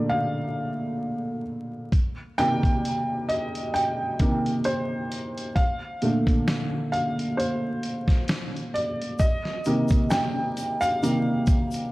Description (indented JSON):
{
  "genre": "lo-fi hip hop",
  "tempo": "66 BPM",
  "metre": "4/4",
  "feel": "swing 56% on 16ths",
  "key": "C dorian",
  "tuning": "A4 = 445 Hz",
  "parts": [
    { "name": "felt-muted upright piano", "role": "accompaniment", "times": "0.0-11.9 s", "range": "Bb2 to G5", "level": "-24 LUFS", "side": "equal", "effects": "none" },
    { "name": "dusty soul sampler-style drum kit", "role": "drums", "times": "1.9-11.9 s", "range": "hi-hat, kick drum, snare drum", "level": "-25 LUFS", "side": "equal", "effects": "vintage 12-bit sampler grit" },
    { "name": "tube shaker", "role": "percussion", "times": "9.2-11.9 s", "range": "none", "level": "-46 LUFS", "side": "left 5 dB", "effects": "none" }
  ],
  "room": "moderate plate reverb, RT60 2.8 s",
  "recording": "vinyl crackle",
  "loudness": "-23 LUFS",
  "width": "side -19 dB against mid",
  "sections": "0.0-9.2 A section; 9.2-11.9 B section",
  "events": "felt piano solo 0.0-9.2, 9.2-11.9",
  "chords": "0.0 Bbmaj7; 1.9 Cm7; 5.6 Bbmaj9; 9.2 Cm7",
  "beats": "0.10 1.01 | 1.92 2.83 3.74 4.65 | 5.56 6.47 7.38 8.29 | 9.20 10.11 11.01"
}